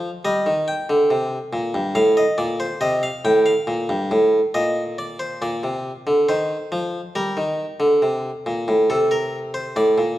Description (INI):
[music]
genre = classical, baroque-style two-part invention for harpsichord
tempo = 69 BPM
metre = 4/4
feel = straight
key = Bb major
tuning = A4 = 438 Hz
[part]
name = harpsichord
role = solo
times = 0.0-10.2 s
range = G2 to G5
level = -18 LUFS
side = equal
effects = none
[sound]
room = wet recital hall reverb, RT60 1.5 s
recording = recorded in a church or concert hall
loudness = -18 LUFS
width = side -15 dB against mid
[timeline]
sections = 0.0-5.4 A section; 5.4-10.2 B section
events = none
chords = 0.2 Eb; 1.9 F/A; 3.7 Bb5; 5.4 Bb; 7.2 Eb5; 8.9 Am/C